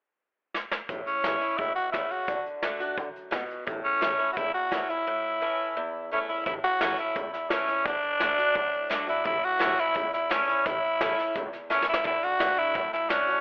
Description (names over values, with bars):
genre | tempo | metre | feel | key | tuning
rockabilly | 172 BPM | 4/4 | straight | A major | A4 = 440 Hz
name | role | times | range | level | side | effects
soft brush drum kit | drums | 0.5-13.4 s | hi-hat, kick drum, snare drum | -35 LUFS | equal | none
picked swing-style acoustic guitar | accompaniment | 0.9-13.4 s | E2 to F#4 | -35 LUFS | equal | none
upright bass | bass | 0.9-13.4 s | A1 to D3 | -40 LUFS | equal | none
growling tenor saxophone | melody | 1.1-13.4 s | C#4 to F#4 | -28 LUFS | equal | none
room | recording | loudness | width
light reverb, studio reverb | telephone sound | -28 LUFS | mono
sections
0.9-6.5 A section; 6.5-13.4 B section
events
drum fill 0.5-0.9, 11.7-12.1; break 5.1-6.5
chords
0.0 N.C.; 0.9 A; 2.3 D; 3.7 A; 7.9 D; 9.3 A; 12.1 D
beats
0.20 0.54 | 0.89 1.24 1.59 1.93 | 2.28 2.63 2.98 3.33 | 3.67 4.02 4.37 4.72 | 5.07 5.42 5.76 6.11 | 6.46 6.81 7.16 7.51 | 7.86 8.21 8.55 8.90 | 9.25 9.60 9.95 10.30 | 10.65 11.00 11.35 11.70 | 12.05 12.40 12.75 13.10